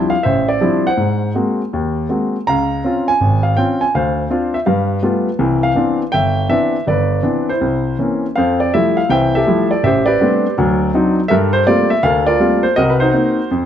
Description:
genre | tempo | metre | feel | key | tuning
solo jazz | 163 BPM | 4/4 | swing 65% on 8ths, rubato | C major, F major from 8.4 s | A4 = 440 Hz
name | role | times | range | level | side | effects
warm baby grand piano | solo | 0.0-13.7 s | G1 to Bb5 | -13 LUFS | equal | none
room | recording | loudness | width
moderate large studio reverb, RT60 1.1 s | dark, warm production | -13 LUFS | side -9 dB against mid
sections
0.0-8.4 A section; 8.4-13.7 B section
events
none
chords
0.0 Dm11; 1.0 Ab9; 2.5 Dbmaj7; 3.9 Dm7; 4.7 G9; 5.4 Cmaj9; 7.6 C7b9; 8.4 Fmaj9; 9.8 Am11; 10.6 D7b9; 11.3 Gm11; 12.8 Cm7b5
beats
0.25 0.62 | 0.99 1.36 1.73 2.10 | 2.47 2.85 3.21 3.58 | 3.94 4.30 4.67 5.03 | 5.40 5.76 6.13 6.50 | 6.87 7.24 7.61 7.99 | 8.37 8.74 9.11 9.47 | 9.84 10.20 10.57 10.93 | 11.30 11.66 12.02 12.39 | 12.76 13.12 13.50

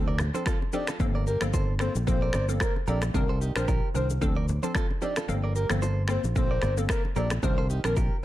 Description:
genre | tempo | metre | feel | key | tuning
afrobeats | 112 BPM | 4/4 | swing 55% on 16ths | G minor | A4 = 439 Hz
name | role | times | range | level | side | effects
glassy wavetable pluck | accompaniment | 0.0-8.2 s | Eb3 to Bb4 | -33 LUFS | left 1 dB | chorus
fingered electric bass | bass | 0.0-8.1 s | G1 to D2 | -28 LUFS | equal | none
direct-recorded clean electric guitar | riff | 0.1-8.2 s | Eb4 to D5 | -37 LUFS | right 4 dB | tape echo
afro-pop drum kit | drums | 0.2-8.1 s | finger snaps, kick drum, rim click, shaker | -29 LUFS | equal | none
bongos and congas | percussion | 0.2-8.1 s | none | -37 LUFS | left 1 dB | none
breathy flute-like synth lead | melody | 0.7-8.0 s | Bb4 to D5 | -34 LUFS | left 1 dB | chorus, tape echo
room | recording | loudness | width
digital ambience | dark, warm production | -24 LUFS | side -14 dB against mid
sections
0.0-8.2 A section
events
kick muted 5.3-6.4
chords
0.0 Dm7; 1.0 Gm11; 3.1 Cm9; 4.2 Dm7; 5.3 Gm11; 7.4 Cm9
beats
0.47 | 1.00 1.54 2.07 2.61 | 3.15 3.68 4.22 4.75 | 5.29 5.82 6.36 6.89 | 7.43 7.97

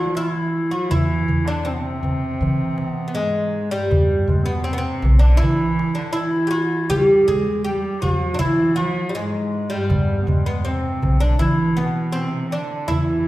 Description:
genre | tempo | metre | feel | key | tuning
Arabic maqam ensemble | 80 BPM | 4/4 | straight | E maqam saba | A4 = 440 Hz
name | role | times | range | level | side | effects
oud | melody | 0.0-13.3 s | G3 to G#4 | -23 LUFS | equal | none
mellow clarinet | second line | 0.0-13.3 s | G3 to G4 | -27 LUFS | left 2 dB | none
warm cello | second line | 0.0-13.3 s | G2 to G#3 | -26 LUFS | right 2 dB | none
upright bass | bass | 0.0-13.2 s | B1 to E3 | -22 LUFS | equal | none
darbuka | percussion | 0.2-13.1 s | none | -25 LUFS | right 1 dB | none
room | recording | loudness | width
wet recital hall reverb, RT60 1.3 s | recorded in a church or concert hall | -17 LUFS | side -16 dB against mid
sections
0.0-13.3 A section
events
none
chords
none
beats
0.17 | 0.92 1.67 2.42 3.17 | 3.92 4.67 5.41 6.16 | 6.91 7.66 8.41 9.16 | 9.91 10.66 11.40 12.15 | 12.90

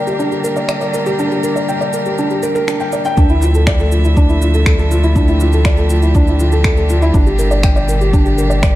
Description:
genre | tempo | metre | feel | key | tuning
piano and strings electronica | 121 BPM | 4/4 | straight | D minor | A4 = 439 Hz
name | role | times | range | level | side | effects
rich string quartet | sustained chords | 0.0-8.8 s | Bb2 to E5 | -21 LUFS | equal | sidechain pumping
felt-muted upright piano | riff | 0.0-8.8 s | D4 to G5 | -16 LUFS | equal | tape echo
electronic shaker and finger snaps | drums | 0.1-8.7 s | none | -25 LUFS | equal | high-pass filter on perc, studio reverb, high-pass filter on snare
round analog bass | bass | 3.2-8.8 s | G1 to D2 | -14 LUFS | equal | sidechain pumping
electronic kick drum | drums | 3.2-8.7 s | none | -13 LUFS | equal | studio reverb
room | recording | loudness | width
light reverb, small room ambience | dark, warm production | -11 LUFS | side -15 dB against mid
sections
0.0-3.2 A section; 3.2-8.8 B section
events
build-up 0.0-3.2; drop 3.2-8.8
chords
0.0 Gm; 3.2 Dmadd9; 7.1 Gm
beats
0.20 0.70 | 1.19 1.69 2.18 2.68 | 3.18 3.67 4.17 4.66 | 5.16 5.66 6.15 6.65 | 7.14 7.64 8.13 8.63

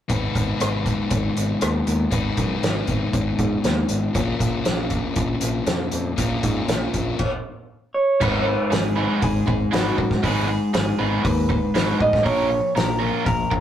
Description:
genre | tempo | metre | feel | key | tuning
indie rock | 118 BPM | 4/4 | straight | G# dorian | A4 = 439 Hz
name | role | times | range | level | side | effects
sludgy distorted guitar | riff | 0.1-13.6 s | A#2 to B4 | -25 LUFS | left 3 dB | overdrive
picked electric bass | bass | 0.1-13.6 s | G#1 to G#2 | -26 LUFS | equal | none
loose indie drum kit | drums | 0.1-13.6 s | crash cymbal, hi-hat, kick drum, rim click, snare drum | -24 LUFS | right 1 dB | none
electric guitar through a small old amp | melody | 7.9-13.6 s | F#4 to D#5 | -24 LUFS | right 2 dB | none
biting overdriven guitar | riff | 8.2-13.5 s | G#3 to B4 | -27 LUFS | right 3 dB | none
room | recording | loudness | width
moderate small room reverb, RT60 0.6 s | rough rehearsal-room recording, tube saturation | -19 LUFS | side -10 dB against mid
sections
0.1-8.2 A section; 8.2-13.6 B section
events
none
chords
0.1 G#m; 4.1 A#m; 8.2 G#m; 12.3 A#m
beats
| 0.09 0.59 1.10 1.61 | 2.12 2.62 3.13 3.64 | 4.15 4.65 5.16 5.67 | 6.18 6.68 7.19 7.70 | 8.21 8.71 9.22 9.72 | 10.23 10.74 11.24 11.75 | 12.25 12.76 13.26

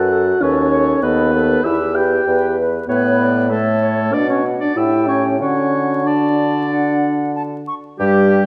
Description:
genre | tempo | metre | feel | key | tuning
quick classical-period movement for wind quintet | 96 BPM | 4/4 | straight | D major | A4 = 440 Hz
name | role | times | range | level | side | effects
concert flute | melody | 0.0-8.4 s | G4 to C#6 | -26 LUFS | equal | none
warm oboe | second line | 0.0-8.4 s | G4 to G5 | -25 LUFS | equal | none
warm French horn | accompaniment | 0.0-8.4 s | A3 to G4 | -20 LUFS | equal | none
warm clarinet | accompaniment | 0.0-8.5 s | G3 to E5 | -26 LUFS | equal | none
warm bassoon | bass | 0.0-8.4 s | D#2 to D3 | -22 LUFS | equal | none
room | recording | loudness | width
wet recital hall reverb, RT60 1.8 s | dark, warm production, vinyl crackle | -17 LUFS | mono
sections
0.0-8.0 A section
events
none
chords
0.4 B7/D#; 1.6 Em; 2.9 A; 4.1 B5; 4.8 A7; 5.4 D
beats
| 0.42 1.03 1.65 2.28 | 2.90 3.52 4.14 4.77 | 5.41 6.06 6.70 7.35 | 7.99

